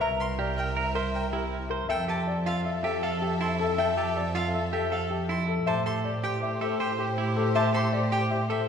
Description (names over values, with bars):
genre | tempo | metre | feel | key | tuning
classical, minimalist pattern music | 159 BPM | 5/4 | straight | F major | A4 = 440 Hz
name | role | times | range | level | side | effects
warm grand piano | melody | 0.0-8.7 s | G4 to E5 | -31 LUFS | left 7 dB | none
warm oboe | second line | 0.0-8.6 s | G4 to Bb4 | -35 LUFS | right 2 dB | none
clear symphonic string section | sustained chords | 0.0-8.7 s | G4 to E5 | -35 LUFS | equal | none
clean electric guitar | arpeggios | 0.0-8.7 s | E4 to C5 | -33 LUFS | right 6 dB | none
rich violin | arpeggios | 0.0-8.6 s | E5 to C6 | -35 LUFS | left 1 dB | none
rich symphonic double bass section | bass | 0.0-8.7 s | C2 to A2 | -30 LUFS | right 1 dB | none
room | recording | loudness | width
wet concert hall reverb, RT60 2.0 s | recorded in a church or concert hall | -25 LUFS | side -7 dB against mid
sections
0.0-1.9 A section; 1.9-8.7 B section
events
none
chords
0.0 C7; 1.9 Fmaj9; 5.7 Am7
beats
| 0.01 0.39 0.76 1.14 1.52 | 1.89 2.27 2.65 3.03 3.40 | 3.78 4.16 4.54 4.91 5.29 | 5.67 6.04 6.42 6.80 7.18 | 7.55 7.93 8.31